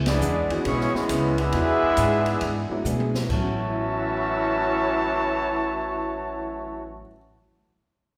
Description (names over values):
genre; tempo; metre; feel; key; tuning
jazz, big band swing; 136 BPM; 4/4; swing 66% on 8ths; A major; A4 = 440 Hz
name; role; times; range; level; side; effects
dark baby grand piano; accompaniment; 0.0-7.2 s; A2 to F#4; -36 LUFS; equal; none
picked steel-string acoustic guitar; accompaniment; 0.0-7.2 s; A2 to G#4; -36 LUFS; equal; none
upright bass; bass; 0.0-7.0 s; A1 to B2; -32 LUFS; equal; none
mellow trumpet section; melody; 0.1-7.0 s; G#3 to A5; -28 LUFS; equal; none
mellow trombone section; second line; 0.1-7.0 s; A2 to E4; -29 LUFS; equal; none
open jazz drum kit; drums; 0.1-3.4 s; crash cymbal, hi-hat, kick drum, ride cymbal, snare drum, toms; -34 LUFS; equal; none
room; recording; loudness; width
wet recital hall reverb, RT60 1.3 s; recorded in a church or concert hall; -24 LUFS; mono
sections
0.0-3.3 A section; 3.3-6.8 B section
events
band accent 0.0; drum fill 2.9-3.3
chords
0.0 C#m7; 1.5 E7; 3.3 A6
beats
0.21 0.66 1.09 | 1.53 1.97 2.41 2.85 | 3.29 3.73 4.17 4.61 | 5.05 5.49 5.93 6.37